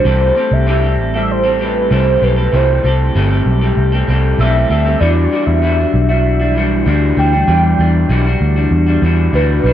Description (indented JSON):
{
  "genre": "indie pop, bedroom pop",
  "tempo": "97 BPM",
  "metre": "4/4",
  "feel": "straight",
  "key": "E minor",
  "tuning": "A4 = 441 Hz",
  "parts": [
    { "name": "warm velvety synth lead", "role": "melody", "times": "0.0-9.7 s", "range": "B4 to G5", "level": "-17 LUFS", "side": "right 2 dB", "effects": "analog chorus, slapback echo" },
    { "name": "electric guitar through a small old amp", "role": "accompaniment", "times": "0.0-9.7 s", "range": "C3 to A4", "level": "-18 LUFS", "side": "left 4 dB", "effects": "lush chorus, warbly pitch drift" },
    { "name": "phased analog pad", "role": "sustained chords", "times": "0.0-9.7 s", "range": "E3 to E4", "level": "-22 LUFS", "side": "right 4 dB", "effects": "phaser, chorus" },
    { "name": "vintage muted picked electric bass", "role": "bass", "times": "0.1-9.7 s", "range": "G1 to E2", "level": "-14 LUFS", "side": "equal", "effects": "none" }
  ],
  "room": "digital ambience",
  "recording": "dry, close 1970s-style studio recording",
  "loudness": "-11 LUFS",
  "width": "side -11 dB against mid",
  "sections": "0.0-9.7 A section",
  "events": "none",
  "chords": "0.1 C6; 5.0 Em9"
}